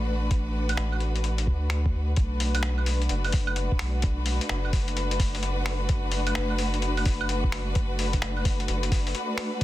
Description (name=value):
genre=future garage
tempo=129 BPM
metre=4/4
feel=swing 64% on 16ths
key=B minor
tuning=A4 = 444 Hz
part: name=clear symphonic string section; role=sustained chords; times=0.0-9.6 s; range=A3 to B4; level=-30 LUFS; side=left 1 dB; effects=sidechain pumping
part: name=soft dub sub bass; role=bass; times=0.0-9.6 s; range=F#1 to D2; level=-27 LUFS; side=equal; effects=sidechain pumping
part: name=electronic kick drum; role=drums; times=0.3-9.6 s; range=none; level=-25 LUFS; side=equal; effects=none
part: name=lo-fi sampler-style drum kit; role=drums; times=0.3-9.6 s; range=claves, finger snaps, hi-hat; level=-32 LUFS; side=left 1 dB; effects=soft clipping on snare
room=little or no reverb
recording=dense, heavily limited modern master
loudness=-24 LUFS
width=side -15 dB against mid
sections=0.0-2.2 A section; 2.2-9.6 B section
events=none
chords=0.0 D6; 2.2 Bm7